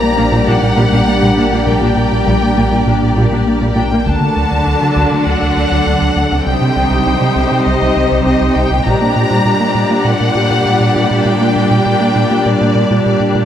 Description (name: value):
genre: cinematic, hybrid orchestral and electronic film score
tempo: 100 BPM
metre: 4/4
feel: straight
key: G harmonic minor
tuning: A4 = 440 Hz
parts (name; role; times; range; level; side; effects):
- rich studio violin section; melody; 0.0-13.4 s; D5 to Bb5; -18 LUFS; left 2 dB; none
- clear symphonic violin section; second line; 0.0-13.4 s; F#4 to D5; -21 LUFS; left 2 dB; none
- dark trombone section; sustained chords; 0.0-3.7 s; Bb3 to D4; -23 LUFS; right 2 dB; none
- ethereal airy pad; sustained chords; 0.0-13.4 s; F#3 to Bb5; -20 LUFS; equal; ensemble chorus, built-in reverb
- mellow French horn section; sustained chords; 0.0-3.4 s; G3 to Bb3; -21 LUFS; left 2 dB; none
- rubbery square bass; riff; 0.0-13.4 s; C2 to Bb3; -16 LUFS; right 1 dB; none
- warm sub bass; bass; 0.0-4.1 s; Bb1; -22 LUFS; equal; none
- clear symphonic viola section; accompaniment; 0.2-13.4 s; G3 to Eb4; -21 LUFS; left 1 dB; none
- harp-like synth pluck; arpeggios; 0.2-13.4 s; C3 to G4; -21 LUFS; equal; chorus
- rich symphonic cello section; bass; 0.2-13.4 s; Bb2 to D3; -20 LUFS; right 2 dB; none
- rich symphonic double bass section; bass; 0.2-3.8 s; Bb1; -22 LUFS; right 2 dB; none
- solo taiko drums; drums; 4.1-5.2, 8.9-10.0 s; none; -25 LUFS; equal; none
room: wet scoring stage reverb, RT60 1.9 s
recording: none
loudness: -10 LUFS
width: side -10 dB against mid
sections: 0.0-4.1 A section; 4.1-13.4 B section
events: none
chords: 0.0 Gm/Bb; 4.1 D; 6.5 Cm; 8.9 Gm/Bb